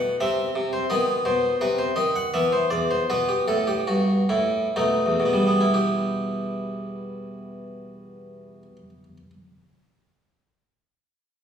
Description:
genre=classical, baroque-style suite movement for harpsichord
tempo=58-90 BPM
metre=3/4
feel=rubato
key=E minor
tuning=A4 = 440 Hz
part: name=harpsichord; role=solo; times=0.0-9.3 s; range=E2 to F#5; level=-21 LUFS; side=equal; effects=none
room=wet recital hall reverb, RT60 1.4 s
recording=recorded in a church or concert hall, small room ambience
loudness=-20 LUFS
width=side -8 dB against mid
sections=0.0-5.8 A section; 5.8-11.4 B section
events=slowing down 0.0-5.8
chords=0.2 N.C.; 0.9 B; 2.3 E5; 3.1 Gmaj13; 4.8 B7; 5.8 Em

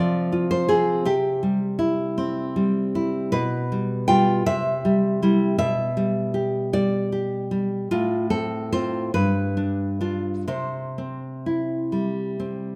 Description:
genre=romantic piece for solo classical guitar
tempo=40-55 BPM (dotted quarters)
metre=6/8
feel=rubato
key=C major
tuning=A4 = 441 Hz
part: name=nylon-string guitar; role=solo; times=0.0-12.8 s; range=G2 to G5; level=-23 LUFS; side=equal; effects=none
room=moderate recital hall reverb, RT60 1.5 s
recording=none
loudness=-23 LUFS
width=mono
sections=0.0-12.8 A section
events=none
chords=0.0 F5/C; 1.1 C; 3.3 G7/B; 4.5 C; 5.6 G/B; 7.9 F/A; 9.1 G7; 10.5 C

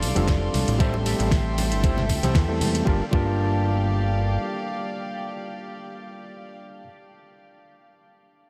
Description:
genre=nu-disco, nu disco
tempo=116 BPM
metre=4/4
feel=swing 54% on 16ths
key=G dorian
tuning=A4 = 440 Hz
part: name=overdriven reed electric piano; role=accompaniment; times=0.0-6.9 s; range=G3 to A5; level=-31 LUFS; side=equal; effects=vintage 12-bit sampler grit, sidechain pumping, analog delay
part: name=warm studio violin section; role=sustained chords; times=0.0-6.6 s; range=G4 to C6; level=-35 LUFS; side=equal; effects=sidechain pumping
part: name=fat analog bass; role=bass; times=0.0-4.4 s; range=F1 to E2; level=-27 LUFS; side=equal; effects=none
part: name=pop drum kit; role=drums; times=0.0-2.8 s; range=hi-hat, ride cymbal, snare drum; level=-35 LUFS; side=equal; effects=none
part: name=congas and tambourine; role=percussion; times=0.0-2.8 s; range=none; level=-34 LUFS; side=equal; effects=none
part: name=mellow electric guitar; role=riff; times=0.2-6.9 s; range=D4 to D5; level=-37 LUFS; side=equal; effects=subtle chorus, analog delay
part: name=electronic kick drum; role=drums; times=0.3-3.3 s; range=none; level=-24 LUFS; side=equal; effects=overdrive
room=moderate huge ambient reverb, RT60 7.8 s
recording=dreamy mix soaked in reverb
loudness=-23 LUFS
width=mono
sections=0.0-2.9 A section; 2.9-7.0 B section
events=drop 0.0-2.9; band accent 2.4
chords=0.0 F6; 0.8 Am7; 2.9 Gm7

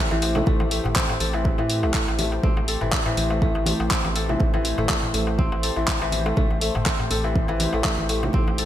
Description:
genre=afro house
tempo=122 BPM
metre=4/4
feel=swing 55% on 16ths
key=A minor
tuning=A4 = 441 Hz
part: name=warm analog pad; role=sustained chords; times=0.0-8.7 s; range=E3 to C5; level=-32 LUFS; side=left 1 dB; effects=chorus, sidechain pumping
part: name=kora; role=arpeggios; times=0.0-8.7 s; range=E3 to A4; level=-26 LUFS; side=left 1 dB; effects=sidechain pumping, ping-pong delay
part: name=warm sub bass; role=bass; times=0.1-8.7 s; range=G1 to A2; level=-27 LUFS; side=equal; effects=sidechain pumping
part: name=congas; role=percussion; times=0.1-8.6 s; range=none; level=-32 LUFS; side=right 2 dB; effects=none
part: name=darbuka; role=percussion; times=0.1-8.6 s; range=none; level=-33 LUFS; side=left 2 dB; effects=none
part: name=deep house drum kit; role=drums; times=0.2-8.7 s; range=handclaps, hi-hat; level=-27 LUFS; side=equal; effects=gated reverb
part: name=electronic kick drum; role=drums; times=0.5-8.4 s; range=none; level=-23 LUFS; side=equal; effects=none
room=light reverb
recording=bright 1980s-style digital production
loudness=-20 LUFS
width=side -12 dB against mid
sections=0.0-8.7 A section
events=none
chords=0.0 Am7

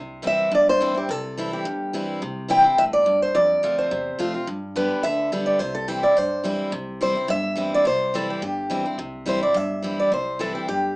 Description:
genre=bluegrass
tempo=212 BPM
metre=4/4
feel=straight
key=C major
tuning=A4 = 440 Hz
part: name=picked steel-string acoustic guitar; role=accompaniment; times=0.0-11.0 s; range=F2 to G4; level=-27 LUFS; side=equal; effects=none
part: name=upright bass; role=bass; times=0.0-11.0 s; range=G1 to G2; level=-37 LUFS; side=equal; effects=none
part: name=picked acoustic archtop guitar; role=melody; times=0.3-11.0 s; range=G4 to G5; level=-20 LUFS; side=equal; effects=none
room=wet small room reverb, RT60 0.5 s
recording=rough home demo mix, small speaker sound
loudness=-20 LUFS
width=side -23 dB against mid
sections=0.0-6.7 A section; 6.7-11.0 A section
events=none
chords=0.0 C; 3.4 F; 4.5 G; 5.6 C

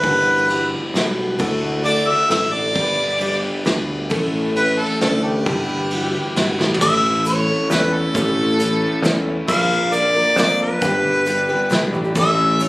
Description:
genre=folk rock and heartland rock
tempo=134 BPM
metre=3/4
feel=straight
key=unclear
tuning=A4 = 440 Hz
part: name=warm harmonica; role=melody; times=0.0-12.7 s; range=G4 to F5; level=-18 LUFS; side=equal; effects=none
part: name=picked twelve-string acoustic guitar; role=accompaniment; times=0.0-12.7 s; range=A2 to B4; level=-22 LUFS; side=left 1 dB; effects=none
part: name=overdriven electric guitar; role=riff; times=0.0-12.7 s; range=G2 to B4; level=-27 LUFS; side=equal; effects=none
part: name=picked electric bass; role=bass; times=0.0-12.7 s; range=G1 to F2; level=-24 LUFS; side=equal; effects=none
part: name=soft brush drum kit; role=drums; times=0.0-12.7 s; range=crash cymbal, hi-hat, kick drum, ride cymbal, snare drum, toms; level=-24 LUFS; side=equal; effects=none
part: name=egg shaker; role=percussion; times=6.8-12.7 s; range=none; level=-40 LUFS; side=equal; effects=none
room=light reverb, small room ambience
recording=recorded on a phone in the room, studio reverb, compression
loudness=-16 LUFS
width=side -19 dB against mid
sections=0.0-6.8 A section; 6.8-12.7 B section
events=drum fill 6.6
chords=0.0 Emadd9/G; 1.4 Dadd9; 2.8 G; 4.1 A; 5.5 Emadd9/G; 6.8 A; 9.5 Bb; 10.8 G; 12.2 A

